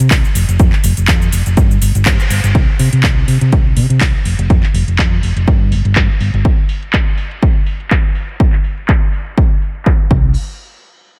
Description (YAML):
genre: filtered disco house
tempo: 123 BPM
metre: 4/4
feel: swing 55% on 16ths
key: unclear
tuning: A4 = 440 Hz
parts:
  - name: hollow-body short-scale fingered electric bass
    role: bass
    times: 0.0-6.4, 10.1-10.3 s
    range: F1 to C3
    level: -16 LUFS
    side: equal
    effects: sidechain pumping, low-pass filter
  - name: house drum kit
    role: drums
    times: 0.0-10.2 s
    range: crash cymbal, handclaps, hi-hat, shaker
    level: -23 LUFS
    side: equal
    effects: overdrive, sidechain pumping on hats, low-pass filter on hats, sidechain pumping on perc, low-pass filter on perc, low-pass filter on snare, sidechain pumping on cymbals, low-pass filter on cymbals, low-pass filter on room
  - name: electronic kick drum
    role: drums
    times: 0.1-10.2 s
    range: none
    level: -15 LUFS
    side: equal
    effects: overdrive
room: little or no reverb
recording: none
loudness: -13 LUFS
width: mono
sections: 0.0-2.5 A section; 2.5-10.4 B section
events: drop 0.0-2.5; band accent 2.1; filter sweep on drum 2.5-10.4; filter sweep on fingered electric bass 2.5-10.4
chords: none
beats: 0.11 | 0.60 1.08 1.57 2.06 | 2.55 3.04 3.52 4.01 | 4.50 4.99 5.47 5.96 | 6.45 6.94 7.42 7.91 | 8.40 8.89 9.38 9.86